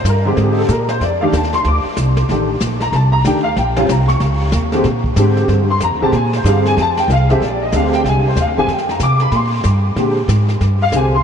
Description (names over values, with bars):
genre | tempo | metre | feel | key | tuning
jazz, small-group swing and bop | 188 BPM | 4/4 | swing 62% on 8ths | Bb mixolydian | A4 = 440 Hz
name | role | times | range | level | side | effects
warm upright piano | accompaniment | 0.0-11.2 s | Db3 to D6 | -16 LUFS | equal | ensemble chorus
upright bass | bass | 0.0-11.2 s | A1 to C3 | -16 LUFS | equal | none
jazz brush drum kit | drums | 0.0-11.2 s | brushed snare drum, hi-hat, kick drum, snare drum | -25 LUFS | left 1 dB | none
room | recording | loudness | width
moderate huge ambient reverb, RT60 8.8 s | dreamy mix soaked in reverb, cassette tape | -13 LUFS | side -7 dB against mid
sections
0.0-7.4 A section; 7.4-11.2 A section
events
none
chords
0.0 Bb13; 1.0 F13; 3.6 Eb13; 4.8 Bb13; 6.8 Fsus2; 7.4 Bb13